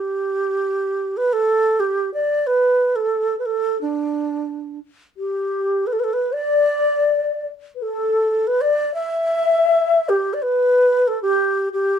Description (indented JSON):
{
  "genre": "chinese traditional, Chinese chamber ensemble",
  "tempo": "91 BPM",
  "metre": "4/4",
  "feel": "rubato",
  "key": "D zhi mode",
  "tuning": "A4 = 440 Hz",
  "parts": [
    { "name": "reedy xiao", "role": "melody", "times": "0.0-12.0 s", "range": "D4 to E5", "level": "-18 LUFS", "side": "right 2 dB", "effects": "none" },
    { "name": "low xiao", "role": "second line", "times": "5.2-12.0 s", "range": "G4 to E5", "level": "-22 LUFS", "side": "left 9 dB", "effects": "none" }
  ],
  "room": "moderate studio reverb, RT60 0.6 s",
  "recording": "dark, warm production",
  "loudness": "-17 LUFS",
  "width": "side -8 dB against mid",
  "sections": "0.0-5.2 A section; 5.2-12.0 B section",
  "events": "none",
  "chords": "none"
}